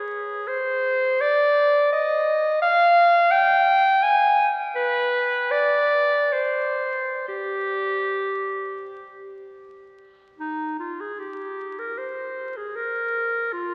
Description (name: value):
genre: classical, free, expressive piece for unaccompanied clarinet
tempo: 46-88 BPM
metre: 3/4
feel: rubato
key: C minor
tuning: A4 = 438 Hz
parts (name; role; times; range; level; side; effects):
- clear clarinet; solo; 0.0-13.7 s; Eb4 to Ab5; -22 LUFS; equal; none
room: wet cathedral reverb, RT60 4.5 s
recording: very old 78 rpm record, vinyl crackle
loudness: -22 LUFS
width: mono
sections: 0.0-10.4 A section; 10.4-13.7 B section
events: none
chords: none